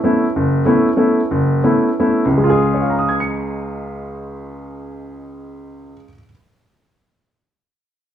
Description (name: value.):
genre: jazz.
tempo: 161-190 BPM.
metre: 3/4.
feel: swing 64% on 8ths.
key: Db mixolydian.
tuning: A4 = 440 Hz.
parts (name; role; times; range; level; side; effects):
warm baby grand piano; solo; 0.0-6.3 s; Gb1 to Db7; -16 LUFS; equal; none.
room: moderate studio ambience, RT60 0.5 s.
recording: small room reverb.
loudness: -14 LUFS.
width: side -10 dB against mid.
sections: 0.0-2.4 A section; 2.4-4.6 B section.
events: slowing down 0.3-2.4.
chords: 0.0 Cb9sus4; 2.4 Db.